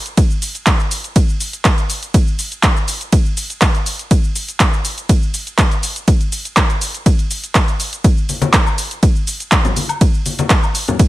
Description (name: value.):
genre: house.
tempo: 122 BPM.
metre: 4/4.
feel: straight.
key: none.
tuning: none.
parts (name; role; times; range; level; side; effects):
deep house drum kit; drums; 0.1-11.1 s; handclaps, hi-hat, ride cymbal, shaker; -19 LUFS; right 1 dB; overdrive.
electronic kick drum; drums; 0.2-11.1 s; none; -13 LUFS; equal; overdrive.
congas and woodblock; percussion; 8.3-11.0 s; none; -20 LUFS; left 4 dB; sidechain pumping on perc.
room: digital ambience.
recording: none.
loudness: -13 LUFS.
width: side -17 dB against mid.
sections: 0.0-11.1 A section.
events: none.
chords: none.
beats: | 0.17 0.67 1.16 1.65 | 2.14 2.63 3.13 3.62 | 4.11 4.60 5.09 5.58 | 6.08 6.57 7.06 7.55 | 8.04 8.54 9.03 9.52 | 10.01 10.50 10.99.